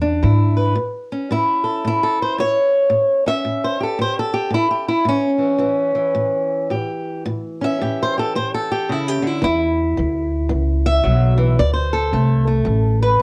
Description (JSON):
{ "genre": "acoustic country blues, solo or duo", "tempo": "111 BPM", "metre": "4/4", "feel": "swing 62% on 8ths", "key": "A mixolydian", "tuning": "A4 = 440 Hz", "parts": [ { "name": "fingerpicked swing-style acoustic guitar", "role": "melody", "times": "0.0-13.2 s", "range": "A2 to E5", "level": "-20 LUFS", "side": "equal", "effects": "none" }, { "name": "upright bass", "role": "bass", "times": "0.0-0.7, 9.4-13.2 s", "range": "A1 to G#2", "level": "-19 LUFS", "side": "equal", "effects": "none" } ], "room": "moderate studio reverb, RT60 0.6 s", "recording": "worn, warbling old tape, cassette tape, warbly pitch drift", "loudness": "-19 LUFS", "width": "mono", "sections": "0.8-13.2 A section", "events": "none", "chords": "0.0 E7; 0.8 A7; 9.4 E5; 11.6 D5", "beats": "0.22 | 0.76 1.30 1.84 2.38 | 2.92 3.46 4.00 4.54 | 5.08 5.63 6.17 6.71 | 7.25 7.79 8.34 8.88 | 9.42 9.96 10.50 11.04 | 11.58 12.12 12.66 13.20" }